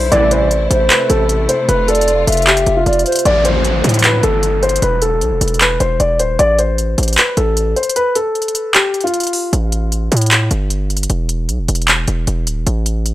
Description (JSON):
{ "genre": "hip hop, trap", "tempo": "153 BPM", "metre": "4/4", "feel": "half-time", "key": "A minor", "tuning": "A4 = 440 Hz", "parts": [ { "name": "dark baby grand piano", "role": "melody", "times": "0.0-9.5 s", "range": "F4 to D5", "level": "-16 LUFS", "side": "left 2 dB", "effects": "low-pass filter" }, { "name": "clear symphonic string section", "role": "sustained chords", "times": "0.0-3.2 s", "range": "C3 to F4", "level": "-24 LUFS", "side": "left 1 dB", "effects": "none" }, { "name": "distorted 808-style bass", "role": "bass", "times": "0.0-13.1 s", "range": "D1 to A2", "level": "-16 LUFS", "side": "equal", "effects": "distortion" }, { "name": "sync-sweep polysynth", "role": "stabs", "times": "0.1-0.5 s", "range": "C2 to E3", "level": "-19 LUFS", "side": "right 4 dB", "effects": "chorus" }, { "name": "trap drum kit", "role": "drums", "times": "0.1-13.1 s", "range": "handclaps, hi-hat", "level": "-15 LUFS", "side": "equal", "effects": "none" }, { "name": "mellow hollow polished pan flute", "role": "second line", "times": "0.3-3.2 s", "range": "C5 to E5", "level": "-18 LUFS", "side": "right 1 dB", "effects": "analog delay" }, { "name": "downlifter", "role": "sound effects", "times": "3.3-6.4 s", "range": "none", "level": "-23 LUFS", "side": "equal", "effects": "none" } ], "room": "studio reverb", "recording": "dry, gritty hardware recording", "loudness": "-12 LUFS", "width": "side -15 dB against mid", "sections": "0.0-3.3 A section; 3.3-13.1 B section", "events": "kick muted 8.0-9.5", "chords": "0.1 Am; 1.7 F; 3.3 Am; 4.8 E5; 6.4 Am; 8.0 N.C.; 9.5 Gsus2; 11.1 E5" }